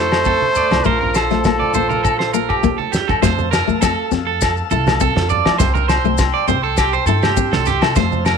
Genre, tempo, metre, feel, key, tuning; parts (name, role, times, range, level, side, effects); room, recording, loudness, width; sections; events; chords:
highlife guitar band; 101 BPM; 4/4; straight; F major; A4 = 441 Hz
clear trumpet; melody; 0.0-2.9 s; A4 to C5; -19 LUFS; left 2 dB
brilliant trombone; second line; 0.0-3.0 s; F3 to A3; -25 LUFS; right 13 dB
fingerpicked steel-string acoustic guitar; accompaniment; 0.0-8.2 s; A3 to E4; -22 LUFS; left 14 dB
electric guitar at the edge of break-up; arpeggios; 0.0-8.4 s; G4 to D5; -20 LUFS; right 14 dB; slapback echo
upright bass; bass; 0.0-8.3 s; Bb1 to F3; -22 LUFS; equal
cloth-damped thuddy drum kit; drums; 0.1-8.4 s; kick drum, snare drum, toms; -21 LUFS; equal
agogo bells; percussion; 0.1-8.4 s; -23 LUFS; left 14 dB
maracas; percussion; 0.2-8.4 s; -29 LUFS; left 18 dB
congas; percussion; 0.4-8.4 s; -25 LUFS; right 7 dB
combo organ; sustained chords; 3.2-8.4 s; F5 to E6; -27 LUFS; left 13 dB; wide subtle chorus
light reverb, studio reverb; 1960s-style stereo with parts hard left and right; -14 LUFS; side -6 dB against mid
0.0-3.2 A section; 3.2-8.4 B section
drum fill 2.0-3.2
0.0 Fmaj7; 0.9 Bbmaj7(no3); 3.2 Fmaj7; 5.6 C